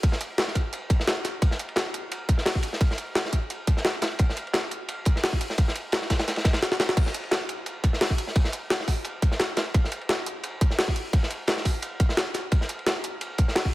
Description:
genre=drum and bass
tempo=173 BPM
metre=4/4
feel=swing 53% on 16ths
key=none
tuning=none
part: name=crunchy breakbeat drum kit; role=drums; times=0.0-13.6 s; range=hi-hat, ride cymbal, snare drum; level=-30 LUFS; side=equal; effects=high-pass filter on cymbals, high-pass filter on hats, high-pass filter on snare, high-pass filter on room
part: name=electronic kick drum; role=drums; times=0.0-13.7 s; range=none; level=-22 LUFS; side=equal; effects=none
part: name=jungle sampler-style drum kit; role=drums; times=0.0-13.6 s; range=crash cymbal, hi-hat, snare drum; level=-28 LUFS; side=equal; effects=none
room=little or no reverb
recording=none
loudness=-23 LUFS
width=side -17 dB against mid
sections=0.0-13.7 A section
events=drum fill 6.6-7.0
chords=none

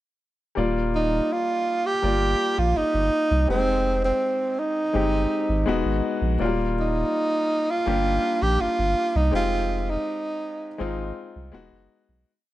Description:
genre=lush 1970s-style soul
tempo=82 BPM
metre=4/4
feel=straight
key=Eb major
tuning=A4 = 439 Hz
part: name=clear grand piano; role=accompaniment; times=0.6-12.3 s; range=Gb3 to D5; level=-27 LUFS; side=left 4 dB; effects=none
part: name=saturated sub bass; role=bass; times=0.6-12.2 s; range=Eb1 to C2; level=-25 LUFS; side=equal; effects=none
part: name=breathy tenor saxophone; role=melody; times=1.0-11.0 s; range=C4 to G4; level=-24 LUFS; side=right 2 dB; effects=tape echo
room=light reverb, small room ambience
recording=nothing above 10.4 kHz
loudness=-21 LUFS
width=side -15 dB against mid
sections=0.6-12.3 verse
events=fade-out 9.3-12.3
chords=0.6 Ebmaj7; 3.5 Fm7; 5.7 Emaj7; 6.4 Ebmaj7; 9.3 Fm7; 11.5 Emaj7

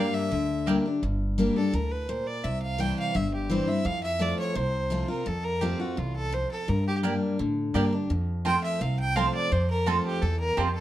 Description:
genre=bluegrass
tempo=170 BPM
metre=4/4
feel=straight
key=G dorian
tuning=A4 = 440 Hz
part: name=rich fiddle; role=melody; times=0.0-10.8 s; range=F4 to G5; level=-30 LUFS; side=right 1 dB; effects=plate reverb
part: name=picked steel-string acoustic guitar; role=accompaniment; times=0.0-10.8 s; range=E2 to G4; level=-28 LUFS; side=left 2 dB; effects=none
part: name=mandolin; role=stabs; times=0.0-0.8, 7.0-10.7 s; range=Bb3 to A5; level=-29 LUFS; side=right 5 dB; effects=none
part: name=upright bass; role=bass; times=0.0-10.8 s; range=G1 to A2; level=-29 LUFS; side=equal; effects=none
room=moderate studio reverb, RT60 0.7 s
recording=dark, warm production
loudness=-24 LUFS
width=side -13 dB against mid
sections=0.0-1.0 A section; 1.0-10.8 A section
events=none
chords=0.0 Gm; 2.4 C; 3.9 F; 6.7 Gm; 8.1 F

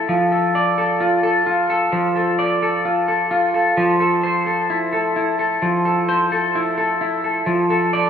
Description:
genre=dream pop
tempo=65 BPM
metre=4/4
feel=straight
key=F major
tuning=A4 = 440 Hz
part: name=clean electric guitar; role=solo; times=0.0-8.1 s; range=F3 to D5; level=-16 LUFS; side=equal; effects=wide subtle chorus, tape echo
room=wet lush hall reverb, RT60 2.5 s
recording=rough home demo mix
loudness=-16 LUFS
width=side -8 dB against mid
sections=0.0-8.1 A section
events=none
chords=0.1 F6

